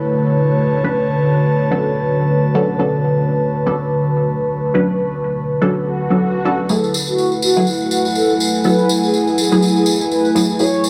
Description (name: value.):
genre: deep house.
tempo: 123 BPM.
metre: 4/4.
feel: swing 57% on 16ths.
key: unclear.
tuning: A4 = 438 Hz.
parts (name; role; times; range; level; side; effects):
deep dark ambient pad; sustained chords; 0.0-10.9 s; B2 to C#6; -25 LUFS; equal; chorus, built-in reverb.
airy breathy pad; texture; 0.0-10.9 s; D3 to A5; -20 LUFS; equal; chorus.
filtered dub chord stab; stabs; 0.8-10.9 s; F#3 to B4; -22 LUFS; equal; phaser, lush chorus, cassette tape, dub echo.
swell; sound effects; 5.9-6.7 s; none; -29 LUFS; equal; none.
mellow horn-like synth lead; melody; 6.7-10.8 s; F#4 to C#5; -22 LUFS; equal; lush chorus, digital delay.
tambourine; percussion; 6.7-10.9 s; none; -25 LUFS; equal; none.
room: moderate plate reverb, RT60 3.4 s.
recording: none.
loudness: -16 LUFS.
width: mono.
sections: 0.0-10.9 A section.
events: swell 5.9-6.7.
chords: 0.0 Bm9; 6.7 F#m11.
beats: 0.35 | 0.84 1.33 1.82 2.31 | 2.79 3.28 3.77 4.26 | 4.75 5.23 5.72 6.21 | 6.70 7.18 7.67 8.16 | 8.65 9.13 9.62 10.11 | 10.60.